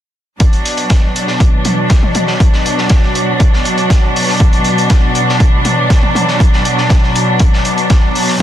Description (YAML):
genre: melodic techno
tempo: 120 BPM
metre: 4/4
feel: straight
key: B minor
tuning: A4 = 440 Hz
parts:
  - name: bright symphonic string section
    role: sustained chords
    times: 0.4-8.4 s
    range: B2 to D4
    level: -15 LUFS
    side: equal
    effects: sidechain pumping
  - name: overtone-sweeping drone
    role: drone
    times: 0.8-8.4 s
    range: B2 to F#3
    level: -19 LUFS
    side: equal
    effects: chorus, built-in reverb, phaser, sidechain pumping
  - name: crunchy breakbeat drum kit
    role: drums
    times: 0.4-8.4 s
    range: hi-hat, snare drum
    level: -21 LUFS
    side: equal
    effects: high-pass filter on hats, small room ambience, high-pass filter on snare, high-pass filter on room
  - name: electronic kick drum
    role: drums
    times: 0.4-8.4 s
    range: none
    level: -10 LUFS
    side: equal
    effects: overdrive, small room ambience
  - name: electronic toms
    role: drums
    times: 1.7-2.3, 5.7-6.3 s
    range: none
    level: -19 LUFS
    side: left 1 dB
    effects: overdrive, small room ambience
room: studio reverb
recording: dense, heavily limited modern master, lossy compression artefacts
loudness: -9 LUFS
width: side -11 dB against mid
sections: 0.4-8.4 A section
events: none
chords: 0.4 Bm